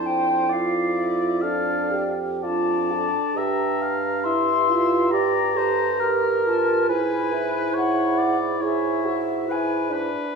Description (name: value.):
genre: classical, slow romantic movement for wind quintet.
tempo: 68 BPM.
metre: 4/4.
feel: rubato.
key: unclear.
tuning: A4 = 440 Hz.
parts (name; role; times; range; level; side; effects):
mellow concert flute; melody; 0.0-9.9 s; D5 to C6; -25 LUFS; left 5 dB; none.
warm oboe; second line; 0.0-10.4 s; Bb4 to F5; -28 LUFS; left 3 dB; none.
clear French horn; accompaniment; 0.0-10.4 s; D4 to B4; -26 LUFS; right 1 dB; none.
mellow clarinet; accompaniment; 0.0-10.1 s; D4 to G4; -27 LUFS; right 6 dB; none.
mellow bassoon; bass; 0.0-10.1 s; F2 to G#2; -28 LUFS; right 4 dB; none.
room: wet recital hall reverb, RT60 1.7 s.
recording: studio ambience.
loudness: -20 LUFS.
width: side -5 dB against mid.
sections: 0.0-10.4 A section.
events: none.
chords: 0.0 Dm/F; 3.4 Edim/G; 6.9 E7/G#.